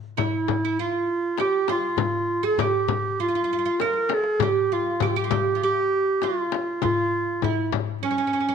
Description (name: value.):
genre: Turkish makam ensemble.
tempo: 99 BPM.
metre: 4/4.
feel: straight.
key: unclear.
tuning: A4 = 435 Hz.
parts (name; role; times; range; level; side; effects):
darbuka; percussion; 0.0-8.5 s; none; -30 LUFS; left 8 dB; none.
mellow clarinet; melody; 0.2-8.5 s; Db4 to Bb4; -23 LUFS; right 2 dB; none.
oud; second line; 0.2-8.5 s; Db4 to Bb4; -29 LUFS; right 8 dB; none.
frame drum; percussion; 0.2-7.9 s; none; -29 LUFS; left 13 dB; none.
room: wet echo chamber reverb, RT60 1.4 s, small room ambience.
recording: 1960s-style stereo with parts hard left and right.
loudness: -21 LUFS.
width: side -7 dB against mid.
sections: 0.0-8.5 A section.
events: drum fill 3.8-4.4.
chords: none.